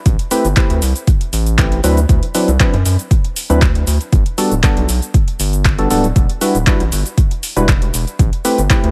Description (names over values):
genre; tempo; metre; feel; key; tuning
deep house; 118 BPM; 4/4; swing 53% on 16ths; unclear; A4 = 441 Hz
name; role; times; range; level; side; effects
round analog bass; bass; 0.1-8.9 s; D1 to F#2; -18 LUFS; equal; sidechain pumping
deep house drum kit; drums; 0.1-8.9 s; cabasa, handclaps, hi-hat; -23 LUFS; equal; none
electronic kick drum; drums; 0.1-8.8 s; none; -15 LUFS; equal; none
percussive organ stab; stabs; 0.3-8.9 s; F#3 to B4; -20 LUFS; equal; analog chorus, sidechain pumping, tape echo
room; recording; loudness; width
little or no reverb; none; -14 LUFS; mono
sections
0.0-8.9 A section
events
none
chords
0.1 Am9; 1.8 D13; 4.1 Gmaj9; 6.2 Em9; 8.2 Am9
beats
| 0.06 0.57 1.07 1.58 | 2.09 2.60 3.11 3.62 | 4.12 4.63 5.14 5.65 | 6.16 6.67 7.18 7.68 | 8.19 8.70